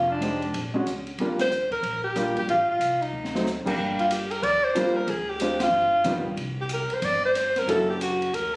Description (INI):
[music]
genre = jazz, small-group swing and bop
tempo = 185 BPM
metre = 4/4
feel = swing 63% on 8ths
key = unclear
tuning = A4 = 440 Hz
[part]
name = breathy alto saxophone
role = melody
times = 0.0-8.6 s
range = D4 to D5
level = -23 LUFS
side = equal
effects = none
[part]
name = upright bass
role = bass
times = 0.0-8.6 s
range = F1 to G2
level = -35 LUFS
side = equal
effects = none
[part]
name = warm upright piano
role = accompaniment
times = 0.2-7.9 s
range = Eb3 to A4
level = -26 LUFS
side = equal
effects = none
[part]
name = open jazz drum kit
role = drums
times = 0.2-8.4 s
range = crash cymbal, hi-hat, kick drum, ride cymbal, rim click, snare drum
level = -35 LUFS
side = equal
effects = none
[sound]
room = moderate plate reverb, RT60 1.0 s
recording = recorded on a phone in the room, studio reverb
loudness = -22 LUFS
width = side -25 dB against mid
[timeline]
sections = 0.0-3.8 A section; 3.8-8.6 B section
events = band accent 1.3, 5.6; drum fill 3.1-3.5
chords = 0.0 Fm7; 0.5 Bb7alt; 1.2 Ebmaj9; 2.5 F/A; 3.1 D7b9; 3.8 Gm7; 5.1 Dm7b5; 5.7 G7b13; 6.4 C5; 7.7 Gb7alt